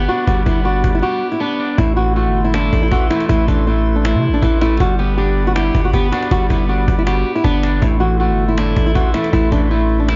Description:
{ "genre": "hip hop, trap", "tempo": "159 BPM", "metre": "4/4", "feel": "half-time", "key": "A dorian", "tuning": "A4 = 440 Hz", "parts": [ { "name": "flamenco guitar", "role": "melody", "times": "0.0-10.2 s", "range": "D4 to G4", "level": "-21 LUFS", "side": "equal", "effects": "low-pass filter, slapback echo" }, { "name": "electric guitar at the edge of break-up", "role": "accompaniment", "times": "0.0-10.2 s", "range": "A2 to G4", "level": "-24 LUFS", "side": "equal", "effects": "low-pass filter" }, { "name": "hollow soft pad", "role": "sustained chords", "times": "0.0-10.2 s", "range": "G4 to C6", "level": "-31 LUFS", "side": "equal", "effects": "chorus" }, { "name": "distorted 808-style bass", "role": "bass", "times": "0.0-10.2 s", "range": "G1 to C3", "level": "-19 LUFS", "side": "equal", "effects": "distortion" }, { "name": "cajon", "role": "drums", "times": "0.1-10.2 s", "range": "none", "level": "-27 LUFS", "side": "equal", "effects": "none" } ], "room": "little or no reverb", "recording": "nothing above 7.4 kHz", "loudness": "-16 LUFS", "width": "mono", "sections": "0.0-1.8 A section; 1.8-10.2 B section", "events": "break 1.0-1.8", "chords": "0.0 Gmaj7; 1.8 Am; 4.8 Gmaj7; 7.8 Am", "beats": "| 0.27 0.65 1.03 1.41 | 1.78 2.16 2.54 2.92 | 3.29 3.67 4.05 4.42 | 4.80 5.18 5.56 5.93 | 6.31 6.69 7.07 7.44 | 7.82 8.20 8.58 8.95 | 9.33 9.71 10.09" }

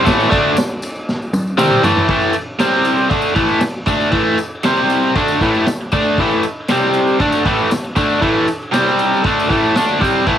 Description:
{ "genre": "garage rock duo or trio", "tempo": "118 BPM", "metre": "4/4", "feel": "straight", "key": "A minor", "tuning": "A4 = 440 Hz", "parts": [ { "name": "overdriven electric guitar", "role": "riff", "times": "0.0-10.4 s", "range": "A2 to D4", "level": "-13 LUFS", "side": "equal", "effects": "cassette tape" }, { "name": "vintage drum kit", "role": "drums", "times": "0.1-10.4 s", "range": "kick drum, ride cymbal, snare drum, toms", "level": "-20 LUFS", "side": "equal", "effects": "cassette tape" }, { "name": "tambourine", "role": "percussion", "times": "0.1-10.2 s", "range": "none", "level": "-38 LUFS", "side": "left 5 dB", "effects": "none" } ], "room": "light reverb, studio ambience", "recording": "home recording on cassette", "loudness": "-13 LUFS", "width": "side -10 dB against mid", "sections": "0.0-2.1 A section; 2.1-10.4 B section", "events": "drum fill 1.1-2.1", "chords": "0.0 Am; 2.1 A5; 2.6 C5; 3.1 A5; 4.6 C5; 5.1 A5; 6.7 C5; 7.2 A5; 8.7 C5; 9.2 Am", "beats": "| 0.06 0.57 1.07 1.58 | 2.09 2.60 3.11 3.62 | 4.13 4.64 5.15 5.66 | 6.17 6.68 7.19 7.70 | 8.21 8.72 9.23 9.75 | 10.26" }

